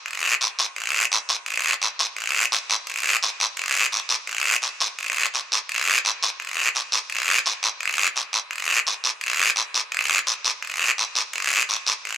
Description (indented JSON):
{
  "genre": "latin",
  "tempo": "170 BPM",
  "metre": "4/4",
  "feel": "straight",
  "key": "none",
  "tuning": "none",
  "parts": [
    { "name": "guiro", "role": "percussion", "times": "0.1-12.2 s", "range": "none", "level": "-20 LUFS", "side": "equal", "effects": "none" }
  ],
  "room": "light reverb",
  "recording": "none",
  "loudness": "-19 LUFS",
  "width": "side -11 dB against mid",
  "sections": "0.0-7.1 A section; 7.1-12.2 B section",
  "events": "none",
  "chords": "none",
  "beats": "| 0.06 0.41 0.77 1.12 | 1.47 1.82 2.17 2.52 | 2.88 3.23 3.58 3.93 | 4.28 4.64 4.99 5.34 | 5.69 6.04 6.40 6.75 | 7.10 7.46 7.81 8.16 | 8.51 8.87 9.22 9.57 | 9.93 10.28 10.63 10.98 | 11.34 11.69 12.04"
}